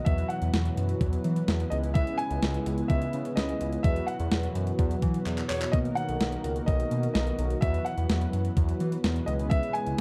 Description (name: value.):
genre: synth-pop.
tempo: 127 BPM.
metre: 4/4.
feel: straight.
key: unclear.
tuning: A4 = 440 Hz.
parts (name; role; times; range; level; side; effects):
warm concert grand piano; melody; 0.0-10.0 s; C#5 to G#5; -36 LUFS; equal; none.
mellow synth brass; accompaniment; 0.0-10.0 s; F#3 to B4; -37 LUFS; equal; chorus.
chorused pulse-width pad; sustained chords; 0.0-10.0 s; B2 to A#4; -37 LUFS; equal; none.
smooth synth bass; bass; 0.1-10.0 s; B1 to E3; -32 LUFS; equal; none.
clean 12-bit digital drum machine; drums; 0.1-10.0 s; handclaps, hi-hat, kick drum, snare drum; -30 LUFS; equal; overdrive.
room: light reverb.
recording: dark, warm production.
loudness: -28 LUFS.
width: mono.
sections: 0.0-10.0 A section.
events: drum fill 5.3-5.7.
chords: 0.1 Esus2; 1.7 C#m7; 3.8 Esus2; 5.7 Bmaj7; 7.6 Esus2; 9.3 C#m7.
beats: | 0.06 0.54 1.01 1.48 | 1.95 2.43 2.90 3.37 | 3.84 4.32 4.79 5.26 | 5.73 6.21 6.68 7.15 | 7.62 8.10 8.57 9.04 | 9.51 9.99.